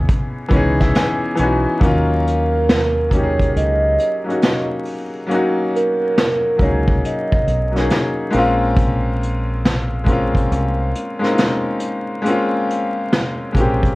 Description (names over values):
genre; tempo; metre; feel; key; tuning
lo-fi hip hop; 69 BPM; 4/4; swing 65% on 16ths; Eb minor; A4 = 443 Hz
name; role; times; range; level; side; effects
bright upright piano; accompaniment; 0.0-14.0 s; Fb3 to Ab5; -19 LUFS; left 1 dB; none
deep dub fingered electric bass; bass; 0.0-14.0 s; Bb1 to Eb2; -20 LUFS; equal; none
vintage brush drum kit; drums; 0.1-14.0 s; hi-hat, kick drum, snare drum; -18 LUFS; equal; vintage 12-bit sampler grit
hollow clarinet-like synth lead; melody; 2.3-7.9 s; Bb4 to Eb5; -20 LUFS; right 2 dB; chorus, phaser, plate reverb
room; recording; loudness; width
moderate studio reverb, RT60 0.5 s; worn, warbling old tape, cassette tape, vinyl crackle, warbly pitch drift; -15 LUFS; side -20 dB against mid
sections
0.0-1.8 A section; 1.8-14.0 B section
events
upright piano fill 0.1-1.8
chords
0.0 Dbm9; 1.8 Ebm7; 8.3 Bbm7